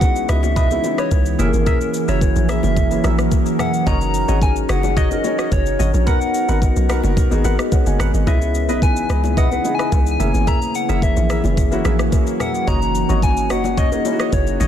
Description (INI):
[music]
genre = amapiano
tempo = 109 BPM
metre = 4/4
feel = straight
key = C# dorian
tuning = A4 = 440 Hz
[part]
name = soft struck synth lead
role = melody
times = 0.0-14.7 s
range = A#4 to A#5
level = -24 LUFS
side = left 1 dB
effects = chorus, ping-pong delay
[part]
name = warm grand piano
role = accompaniment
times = 0.0-14.7 s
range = G#3 to G#5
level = -23 LUFS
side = left 2 dB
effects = none
[part]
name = deep dark ambient pad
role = sustained chords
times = 0.0-14.7 s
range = C#3 to A#4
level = -25 LUFS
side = right 2 dB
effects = chorus, built-in reverb
[part]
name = hollow log drum bass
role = bass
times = 0.0-14.7 s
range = F#1 to C#2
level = -19 LUFS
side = equal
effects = none
[part]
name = afro-pop drum kit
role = drums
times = 0.0-14.7 s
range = kick drum, rim click, shaker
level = -20 LUFS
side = equal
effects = vintage 12-bit sampler grit, soft clipping on snare
[part]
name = bongos and congas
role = percussion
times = 0.0-14.7 s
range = none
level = -30 LUFS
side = left 6 dB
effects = none
[part]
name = percussive organ stab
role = stabs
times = 0.3-14.7 s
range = E4 to F#5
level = -28 LUFS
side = left 1 dB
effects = chorus, phaser, ping-pong delay
[sound]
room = little or no reverb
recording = dense, heavily limited modern master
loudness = -15 LUFS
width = side -10 dB against mid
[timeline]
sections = 0.0-14.7 A section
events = none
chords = 0.0 C#m9; 1.4 F#9; 3.9 D#m7/F#; 6.1 G#m9; 8.3 C#m9; 10.2 F#9; 12.7 D#m7/F#